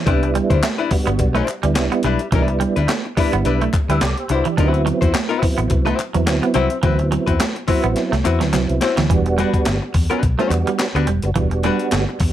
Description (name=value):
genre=funk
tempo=106 BPM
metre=4/4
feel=swing 56% on 16ths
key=E minor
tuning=A4 = 441 Hz
part: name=semi-hollow electric guitar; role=riff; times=0.0-12.2 s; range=E3 to D4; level=-24 LUFS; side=right 8 dB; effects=lush chorus
part: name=archtop guitar, miked and amplified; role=accompaniment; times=0.1-12.1 s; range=G3 to C#5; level=-22 LUFS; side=left 6 dB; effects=none
part: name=mellow tonewheel organ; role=stabs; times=0.1-12.0 s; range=E3 to E5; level=-23 LUFS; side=right 4 dB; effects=chorus vibrato, slow rotary speaker, tape echo
part: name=vintage muted fingered electric bass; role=bass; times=0.1-12.3 s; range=E1 to E2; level=-20 LUFS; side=left 1 dB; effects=none
part: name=breakbeat sampler-style drum kit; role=drums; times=0.1-12.3 s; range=hi-hat, kick drum, snare drum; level=-21 LUFS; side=equal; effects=none
part: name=group handclap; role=percussion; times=0.6-12.1 s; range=none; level=-29 LUFS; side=left 7 dB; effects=none
room=light reverb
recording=none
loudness=-16 LUFS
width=side -12 dB against mid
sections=0.0-9.1 A section; 9.1-12.3 B section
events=drum fill 8.0-9.1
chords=0.1 Cmaj9; 4.6 D13; 9.1 Em9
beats=| 0.07 0.64 1.20 1.76 | 2.33 2.89 3.46 4.02 | 4.58 5.15 5.71 6.27 | 6.84 7.40 7.97 8.53 | 9.10 9.66 10.23 10.79 | 11.36 11.92